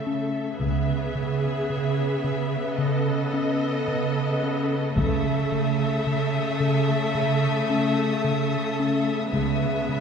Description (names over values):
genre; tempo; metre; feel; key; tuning
cinematic, suspense film score; 55 BPM; 4/4; straight; unclear; A4 = 440 Hz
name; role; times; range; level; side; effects
rich chamber violin section; melody; 0.0-10.0 s; D#5 to E5; -30 LUFS; left 4 dB; none
clear studio viola section; accompaniment; 0.0-10.0 s; G#3 to A4; -28 LUFS; equal; none
rich studio cello section; bass; 0.0-10.0 s; C#3; -29 LUFS; right 1 dB; none
impact; sound effects; 0.0-0.6 s; none; barely audible; none; none
round analog bass; riff; 0.1-10.0 s; C#3 to C#4; -26 LUFS; right 1 dB; none
rich studio double bass section; bass; 0.6-10.0 s; C#2; -32 LUFS; equal; none
taiko ensemble; drums; 5.0-7.1 s; none; -29 LUFS; left 1 dB; none
clear studio violin section; texture; 5.0-10.0 s; A5 to D#6; -37 LUFS; left 5 dB; none
room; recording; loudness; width
wet concert hall reverb, RT60 2.1 s; heard from further back in the room; -22 LUFS; side -6 dB against mid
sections
0.0-10.0 A section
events
impact 0.0-0.6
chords
0.0 A/C#; 0.6 C#m7; 2.8 B7/C#; 5.0 A/C#; 9.3 C#m7